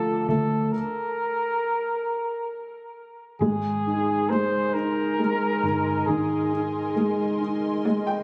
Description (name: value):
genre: six-eight pop ballad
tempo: 45 BPM (dotted quarters)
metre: 6/8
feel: straight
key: unclear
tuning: A4 = 440 Hz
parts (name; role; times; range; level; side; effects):
- warm flugelhorn; melody; 0.0-7.1 s; Ab4 to C5; -29 LUFS; equal; digital delay
- dark upright piano; accompaniment; 0.0-8.2 s; D3 to G5; -27 LUFS; equal; none
- airy breathy pad; sustained chords; 0.1-8.2 s; Bb4 to D6; -40 LUFS; equal; chorus
- vintage muted fingered electric bass; bass; 0.0-8.2 s; G1 to D2; -34 LUFS; equal; none
room: moderate plate reverb, RT60 2.7 s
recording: recorded on a phone in the room, club reverb, compression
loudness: -25 LUFS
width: mono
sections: 0.0-3.4 A section; 3.4-8.2 B section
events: stop 0.7-3.4; upright piano fill 7.4-8.2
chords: 0.0 Dm; 0.7 N.C.; 3.4 Abadd9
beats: | 0.73 2.07 | 3.41 4.75 | 6.07 7.40